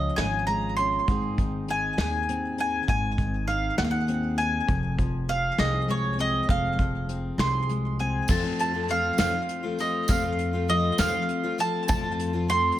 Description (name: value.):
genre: indie folk with a building arrangement.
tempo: 67 BPM (dotted quarters).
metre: 6/8.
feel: straight.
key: unclear.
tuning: A4 = 441 Hz.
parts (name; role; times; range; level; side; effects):
mandolin; melody; 0.0-12.8 s; Db5 to C6; -27 LUFS; right 2 dB; digital delay.
fingerpicked steel-string acoustic guitar; accompaniment; 0.0-10.1 s; F2 to Ab4; -32 LUFS; left 3 dB; none.
upright bass; bass; 0.0-12.7 s; F1 to F2; -29 LUFS; equal; none.
soft brush drum kit; drums; 0.2-12.6 s; crash cymbal, hi-hat, kick drum, snare drum; -28 LUFS; equal; none.
picked twelve-string acoustic guitar; accompaniment; 8.3-12.8 s; F2 to F4; -29 LUFS; left 5 dB; none.
tambourine; percussion; 8.3-12.0 s; none; -37 LUFS; right 9 dB; none.
room: light reverb.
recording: none.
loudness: -23 LUFS.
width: side -12 dB against mid.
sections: 0.0-8.3 A section; 8.3-12.8 B section.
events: none.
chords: 0.0 Db; 1.1 Ab; 4.7 Fm; 8.3 F.